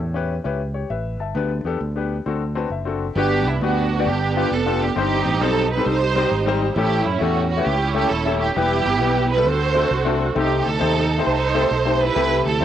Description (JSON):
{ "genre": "uptempo gospel", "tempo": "134 BPM", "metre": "4/4", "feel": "swing 66% on 8ths", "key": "G major", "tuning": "A4 = 442 Hz", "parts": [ { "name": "clear concert grand piano", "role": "accompaniment", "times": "0.0-12.6 s", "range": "G2 to A5", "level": "-23 LUFS", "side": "left 7 dB", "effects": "cassette tape" }, { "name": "fingered electric bass", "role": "bass", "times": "0.0-12.6 s", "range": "Eb1 to F#2", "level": "-24 LUFS", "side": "right 1 dB", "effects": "none" }, { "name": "warm studio string section", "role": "melody", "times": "3.2-12.6 s", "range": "B3 to C5", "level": "-20 LUFS", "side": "right 5 dB", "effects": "tape echo" } ], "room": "light reverb, small room ambience", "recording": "home recording on cassette", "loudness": "-18 LUFS", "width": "side -10 dB against mid", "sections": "0.0-3.2 A section; 3.2-12.6 B section", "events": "grand piano fill 2.3-3.2", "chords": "0.0 A7; 1.4 G/D; 2.3 D7; 3.2 Gmaj7; 4.1 G7; 5.0 Cm/G; 6.8 A7; 8.6 Em; 9.5 D7; 10.4 Cm6; 12.1 Am7/C", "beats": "0.45 0.90 | 1.35 1.80 2.26 2.71 | 3.16 3.61 4.06 4.51 | 4.96 5.41 5.86 6.31 | 6.76 7.21 7.66 8.11 | 8.55 9.00 9.45 9.90 | 10.35 10.80 11.25 11.70 | 12.15 12.60" }